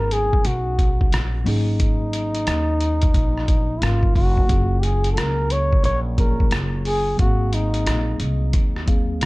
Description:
hip hop, jazz-hop; 89 BPM; 4/4; swing 64% on 16ths; A4 = 440 Hz
breathy flugelhorn; melody; 0.0-9.3 s; D#4 to C#5; -24 LUFS; equal; analog delay
tine electric piano; accompaniment; 0.0-9.3 s; F#3 to E#5; -30 LUFS; left 1 dB; overdrive, fast stereo tremolo
upright bass; bass; 0.0-9.3 s; F#1 to D#2; -22 LUFS; equal
trip hop sampler-style drum kit; drums; 0.1-9.3 s; hi-hat, kick drum, rim click; -20 LUFS; equal
light reverb; dark, warm production; -17 LUFS; side -22 dB against mid
0.0-9.3 A section
0.0 C#9sus4; 1.5 G#9sus4; 4.5 F#maj9; 7.2 G#13

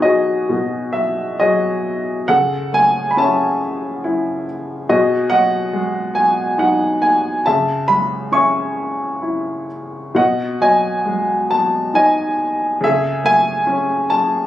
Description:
classical, lyrical solo piano; 68 BPM; 3/4; uneven beats, rubato; B mixolydian; A4 = 440 Hz
warm upright piano; solo; 0.0-14.5 s; B2 to C#6; -15 LUFS; equal
light reverb; recorded on a phone in the room, club reverb; -15 LUFS; side -13 dB against mid
0.0-14.5 A section
0.0 B6; 2.3 A/C#; 4.9 B6; 7.5 C#m7; 10.2 B6; 12.8 Amaj7/C#

